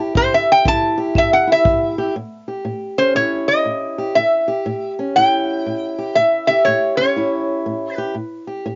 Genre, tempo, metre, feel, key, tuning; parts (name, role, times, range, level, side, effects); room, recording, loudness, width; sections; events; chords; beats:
acoustic country blues, solo or duo; 120 BPM; 4/4; swing 64% on 8ths; A mixolydian; A4 = 441 Hz
fingerpicked old ladder-braced acoustic guitar; accompaniment; 0.0-8.8 s; A2 to G4; -24 LUFS; equal
metal-body resonator slide guitar; melody; 0.2-8.4 s; C5 to A5; -18 LUFS; equal; cassette tape
kick drum; drums; 0.2-1.8 s; -24 LUFS; equal; cassette tape
little or no reverb; home recording on cassette, nothing above 7.5 kHz; -17 LUFS; mono
0.0-2.2 A section; 2.2-8.8 B section
resonator guitar played with a steel bar solo 0.0-2.2
0.0 A7(no3); 2.2 A7
| 0.16 0.66 1.16 1.65 | 2.15 2.65 3.15 3.65 | 4.15 4.66 5.16 5.66 | 6.16 6.66 7.16 7.67 | 8.17 8.67